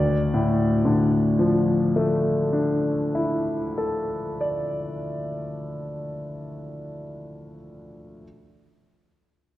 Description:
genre	classical, impressionist solo piano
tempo	38-40 BPM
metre	4/4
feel	rubato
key	D minor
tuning	A4 = 440 Hz
part	clear concert grand piano	solo	0.0-8.2 s	D2 to D5	-22 LUFS	left 1 dB	none
room	wet concert hall reverb, RT60 1.9 s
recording	worn, warbling old tape, cassette tape, warbly pitch drift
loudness	-21 LUFS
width	side -14 dB against mid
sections	0.0-6.1 A section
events	none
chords	0.0 Dmadd9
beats	1.41 3.00 4.57

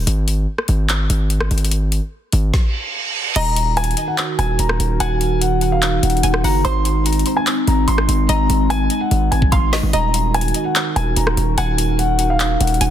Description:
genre	hip hop, trap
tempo	146 BPM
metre	4/4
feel	half-time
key	Eb dorian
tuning	A4 = 440 Hz
part	hard-hitting 808-style bass	bass	0.0-12.9 s	Eb1 to Ab1	-18 LUFS	equal	none
part	trap drum kit	drums	0.1-12.9 s	crash cymbal, handclaps, hi-hat, kick drum, rim click, snare drum	-21 LUFS	left 1 dB	none
part	reverse cymbal	sound effects	2.7-3.4 s	none	-22 LUFS	right 6 dB	none
part	dark baby grand piano	melody	3.4-12.9 s	F5 to C6	-22 LUFS	left 2 dB	none
part	string-like resonator pluck	second line	3.4-12.9 s	C5 to Ab5	-27 LUFS	right 1 dB	chorus, digital delay
part	warbly tape-like pad	sustained chords	3.4-12.9 s	Eb3 to Bb4	-22 LUFS	right 2 dB	chorus, built-in reverb
room	little or no reverb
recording	dense, heavily limited modern master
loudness	-15 LUFS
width	side -10 dB against mid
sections	0.0-3.4 A section; 3.4-12.9 B section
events	break 0.0-3.4; reverse cymbal 2.7-3.4; drum fill 9.1-9.9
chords	0.0 N.C.; 3.4 Ebm; 6.6 Ab; 9.9 Ebm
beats	| 0.07 0.48 0.89 1.30 | 1.71 2.12 2.54 2.95 | 3.36 3.77 4.18 4.59 | 5.00 5.41 5.82 6.24 | 6.65 7.06 7.47 7.88 | 8.29 8.70 9.11 9.52 | 9.93 10.34 10.76 11.17 | 11.58 11.99 12.40 12.81

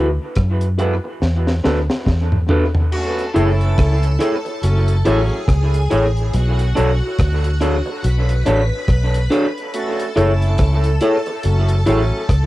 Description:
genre	lovers rock reggae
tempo	70 BPM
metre	4/4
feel	swing 60% on 16ths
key	F# minor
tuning	A4 = 440 Hz
part	mellow tine electric piano	accompaniment	0.0-12.0 s	D4 to C#5	-23 LUFS	left 3 dB	cassette tape
part	electric guitar through a small old amp	stabs	0.0-12.0 s	D4 to C#5	-22 LUFS	right 2 dB	cassette tape, tape echo, plate reverb
part	vintage muted fingered electric bass	bass	0.0-12.5 s	F#1 to F#2	-16 LUFS	equal	none
part	deep reggae drum kit	drums	0.4-12.5 s	crash cymbal, hi-hat, kick drum, rim click, snare drum, toms	-20 LUFS	equal	cassette tape, tape echo
part	string machine, violins	second line	2.9-12.5 s	F#4 to B5	-27 LUFS	equal	ensemble chorus, cassette tape
part	warm horn section	second line	2.9-12.2 s	F#3 to F#4	-25 LUFS	right 1 dB	cassette tape
room	little or no reverb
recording	home recording on cassette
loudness	-15 LUFS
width	side -16 dB against mid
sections	0.0-2.9 A section; 2.9-12.5 B section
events	drum fill 1.2-2.9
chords	0.0 D69; 2.9 F#m7; 6.3 Bm9; 9.7 F#m7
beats	0.36 1.21 2.07 | 2.92 3.77 4.63 5.48 | 6.33 7.18 8.04 8.89 | 9.74 10.59 11.44 12.29

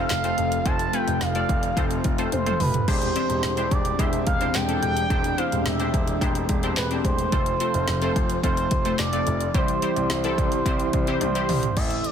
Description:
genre	synth-pop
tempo	108 BPM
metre	4/4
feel	straight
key	C major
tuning	A4 = 440 Hz
part	expressive synth lead	melody	0.0-12.1 s	B4 to A5	-27 LUFS	right 2 dB	chorus, ping-pong delay
part	funky polysynth comp	accompaniment	0.0-11.7 s	G3 to D5	-29 LUFS	left 3 dB	chorus
part	ensemble organ-string	sustained chords	0.0-12.1 s	C3 to F4	-30 LUFS	equal	ensemble chorus
part	warm grand piano	bass	0.1-12.0 s	E1 to C2	-28 LUFS	equal	none
part	deep house drum kit	drums	0.1-12.1 s	crash cymbal, handclaps, hi-hat, kick drum, snare drum, toms	-26 LUFS	equal	none
room	light reverb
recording	dense, heavily limited modern master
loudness	-21 LUFS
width	side -8 dB against mid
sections	0.0-11.8 A section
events	drum fill 2.3-2.9, 11.2-11.8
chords	0.0 F; 2.9 Cadd9/E; 7.3 F; 9.5 C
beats	0.10 | 0.66 1.21 1.77 2.32 | 2.88 3.44 3.99 4.55 | 5.10 5.66 6.21 6.77 | 7.32 7.88 8.44 8.99 | 9.55 10.10 10.66 11.21 | 11.77

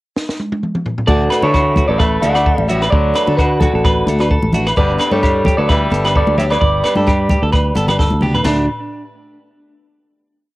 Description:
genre	highlife guitar band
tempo	130 BPM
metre	4/4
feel	swing 55% on 16ths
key	D major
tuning	A4 = 440 Hz
part	compact cocktail drum kit	drums	0.2-8.6 s	hi-hat, kick drum, rim click, snare drum, splash cymbal, toms	-18 LUFS	equal	cassette tape
part	electric guitar through a small old amp	melody	1.1-8.0 s	F#4 to F#5	-18 LUFS	equal	plate reverb
part	breathy alto saxophone	second line	1.1-8.0 s	D3 to A3	-25 LUFS	left 1 dB	cassette tape, plate reverb
part	picked steel-string acoustic guitar	accompaniment	1.1-8.7 s	E3 to G4	-25 LUFS	left 2 dB	cassette tape, plate reverb
part	clean electric guitar	arpeggios	1.1-8.7 s	D4 to D5	-20 LUFS	right 2 dB	cassette tape, plate reverb, analog delay
part	fingered electric bass	bass	1.1-8.7 s	G1 to D3	-18 LUFS	equal	none
part	agogo bells	percussion	1.3-8.6 s	none	-23 LUFS	left 1 dB	none
part	congas	percussion	1.4-8.7 s	none	-21 LUFS	equal	none
room	light reverb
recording	home recording on cassette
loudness	-12 LUFS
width	side -18 dB against mid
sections	0.0-1.1 pickup bar; 1.1-8.5 A section; 8.5-10.3 final chord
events	drum fill 0.2-1.1, 8.0-8.5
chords	0.0 N.C.; 1.1 Dadd9; 4.8 G; 8.5 D5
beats	0.16 0.62 | 1.08 1.54 2.00 2.46 | 2.92 3.38 3.84 4.30 | 4.77 5.23 5.69 6.15 | 6.61 7.07 7.53 7.99 | 8.46

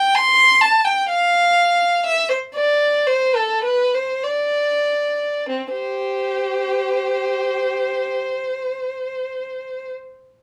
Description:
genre	classical, baroque-style suite movement for unaccompanied violin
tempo	46-66 BPM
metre	3/4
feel	rubato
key	C major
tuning	A4 = 440 Hz
part	warm violin	solo	0.0-9.9 s	C4 to C6	-19 LUFS	equal	none
room	light reverb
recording	none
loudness	-19 LUFS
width	mono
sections	0.0-5.5 A section; 5.5-9.1 B section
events	slowing down 0.0-5.5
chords	none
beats	0.13 1.07 | 2.05 3.09 4.23 | 5.48 6.71 7.93

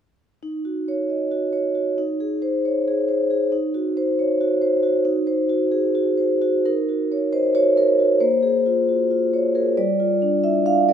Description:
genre	classical, contemporary piece for solo vibraphone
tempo	271 BPM (eighths)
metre	7/8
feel	rubato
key	Eb dorian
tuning	A4 = 440 Hz
part	vibraphone with soft mallets	solo	0.4-10.9 s	G3 to F5	-18 LUFS	equal	none
room	moderate recital hall reverb, RT60 1.6 s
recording	minimal, uncompressed stereo recording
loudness	-18 LUFS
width	side -8 dB against mid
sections	0.4-6.7 A section; 6.7-10.9 B section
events	none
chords	0.4 Ebm7; 2.0 Ab/Eb; 3.5 Ebm6; 6.7 Ebm7; 8.2 Bbm9; 9.8 G7(no3)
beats	| 0.42 0.65 0.88 1.10 1.32 1.54 1.76 | 1.98 2.21 2.43 2.65 2.87 3.09 3.30 | 3.52 3.74 3.96 4.18 4.40 4.62 4.83 | 5.05 5.27 5.49 5.72 5.95 6.18 6.43 | 6.66 6.89 7.11 7.33 7.55 7.77 7.99 | 8.21 8.43 8.65 8.87 9.10 9.32 9.54 | 9.77 9.98 10.21 10.43 10.65 10.88

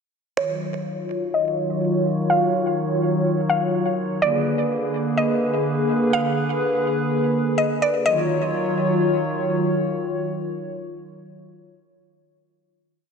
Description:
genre	hip hop, atmospheric cloud-rap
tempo	125 BPM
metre	4/4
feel	half-time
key	Eb minor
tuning	A4 = 441 Hz
part	mallet-like synth pluck	melody	0.4-9.5 s	Db5 to F5	-24 LUFS	equal	chorus, low-pass filter, tape echo
part	hollow soft pad	sustained chords	0.4-11.7 s	D3 to Db5	-21 LUFS	equal	chorus, low-pass filter
room	moderate lush hall reverb, RT60 2.8 s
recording	none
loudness	-20 LUFS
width	side -6 dB against mid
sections	0.4-8.1 breakdown; 8.1-11.9 final chord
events	filter sweep 0.4-8.1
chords	0.4 Ebm9; 4.2 Bb7b9; 8.1 Ebm9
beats	| 0.38 0.86 1.34 1.82 | 2.30 2.78 3.26 3.74 | 4.22 4.70 5.18 5.66 | 6.14 6.62 7.10 7.58 | 8.06 8.54 9.02 9.50 | 9.98 10.46 10.94 11.42

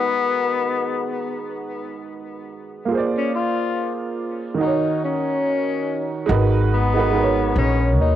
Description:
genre	lo-fi hip hop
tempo	71 BPM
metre	4/4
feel	swing 58% on 16ths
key	G# minor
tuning	A4 = 441 Hz
part	mellow tenor saxophone	melody	0.0-8.2 s	B3 to E#4	-23 LUFS	left 6 dB	low-pass filter, cassette tape, tape echo
part	warm upright piano	accompaniment	0.0-8.2 s	D#3 to D5	-23 LUFS	right 5 dB	cassette tape, low-pass filter
part	upright bass	bass	6.3-8.2 s	G#1 to D#2	-19 LUFS	left 1 dB	transformer saturation
room	light reverb, small room ambience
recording	home recording on cassette, nothing above 10.4 kHz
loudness	-19 LUFS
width	side -11 dB against mid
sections	0.0-6.3 A section; 6.3-8.2 B section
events	none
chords	0.0 G#m9; 2.9 A#7; 4.6 D#m7; 6.3 G#m9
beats	0.37 1.22 2.06 | 2.91 3.75 4.60 5.44 | 6.29 7.13 7.98

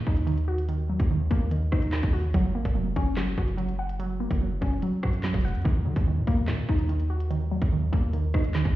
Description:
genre	hip hop, drill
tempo	145 BPM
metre	4/4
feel	half-time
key	Eb minor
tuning	A4 = 440 Hz
part	warbly dusty pluck	accompaniment	0.0-8.8 s	Eb3 to Gb5	-29 LUFS	right 1 dB	chorus, phaser, low-pass filter
part	hard-hitting 808-style bass	bass	0.0-8.8 s	F1 to Eb3	-27 LUFS	equal	none
part	drill drum kit	drums	0.1-8.7 s	handclaps, hi-hat, kick drum, rim click, snare drum	-27 LUFS	equal	none
room	little or no reverb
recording	heard muffled through a wall, stone room reverb, EQ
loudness	-24 LUFS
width	side -15 dB against mid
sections	0.0-8.8 A section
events	none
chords	0.0 Ebm; 2.3 Gb; 5.7 Ebm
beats	0.27 | 0.69 1.10 1.51 1.93 | 2.34 2.75 3.17 3.58 | 4.00 4.41 4.82 5.24 | 5.65 6.07 6.48 6.89 | 7.31 7.72 8.13 8.55

